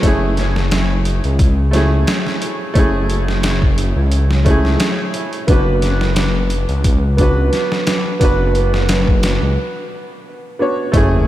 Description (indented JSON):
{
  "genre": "trip hop",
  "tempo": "88 BPM",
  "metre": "4/4",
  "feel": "swing 55% on 16ths",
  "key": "unclear",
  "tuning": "A4 = 435 Hz",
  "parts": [
    { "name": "clear upright piano", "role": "accompaniment", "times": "0.0-11.3 s", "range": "A3 to C#5", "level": "-19 LUFS", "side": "right 1 dB", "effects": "harmonic tremolo, tape echo" },
    { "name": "dark detuned saw bass", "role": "bass", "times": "0.0-11.3 s", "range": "F#1 to C#2", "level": "-16 LUFS", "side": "equal", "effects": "none" },
    { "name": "trip hop sampler-style drum kit", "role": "drums", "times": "0.0-11.1 s", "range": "hi-hat, kick drum, snare drum", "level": "-18 LUFS", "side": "equal", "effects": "none" },
    { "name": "sub drop", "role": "sound effects", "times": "10.9-11.3 s", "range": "none", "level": "-17 LUFS", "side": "equal", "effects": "none" }
  ],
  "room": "light reverb, digital ambience",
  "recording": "none",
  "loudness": "-13 LUFS",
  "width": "side -14 dB against mid",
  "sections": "0.0-10.9 A section",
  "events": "filter sweep on upright piano 0.0-10.9; break 9.6-10.9; impact 10.9-11.3",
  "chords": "0.0 F#m7; 5.5 Bm/F#"
}